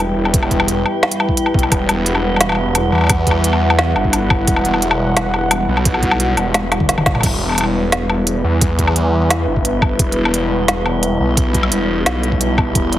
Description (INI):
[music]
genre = half-time drum and bass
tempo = 174 BPM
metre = 4/4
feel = half-time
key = E minor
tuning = A4 = 440 Hz
[part]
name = dark analog pad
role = sustained chords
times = 0.0-13.0 s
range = G3 to G5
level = -20 LUFS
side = equal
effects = chorus, sidechain pumping
[part]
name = phased detuned saw bass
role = bass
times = 0.0-13.0 s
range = E1 to E2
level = -18 LUFS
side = equal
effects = phaser
[part]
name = metallic inharmonic drone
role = texture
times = 0.0-13.0 s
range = E4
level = -25 LUFS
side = left 2 dB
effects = chorus, built-in reverb, phaser
[part]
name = electronic kick drum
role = drums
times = 0.3-12.8 s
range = none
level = -18 LUFS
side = equal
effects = overdrive
[part]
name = organic electronic drum kit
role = drums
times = 0.3-13.0 s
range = crash cymbal, hi-hat, snare drum, toms, woodblock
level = -18 LUFS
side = left 1 dB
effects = none
[sound]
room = light reverb, digital ambience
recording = heavily compressed radio sound, multiband compression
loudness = -13 LUFS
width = side -13 dB against mid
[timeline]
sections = 0.0-7.2 A section; 7.2-13.0 A section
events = drop 0.0-7.2, 7.2-13.0; drum fill 6.5-7.2; band accent 7.1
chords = 0.0 Em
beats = | 0.34 0.68 1.03 1.37 | 1.72 2.06 2.41 2.75 | 3.10 3.44 3.79 4.13 | 4.47 4.82 5.16 5.51 | 5.85 6.20 6.54 6.89 | 7.23 7.58 7.92 8.27 | 8.61 8.96 9.30 9.65 | 9.99 10.34 10.68 11.03 | 11.37 11.72 12.06 12.41 | 12.75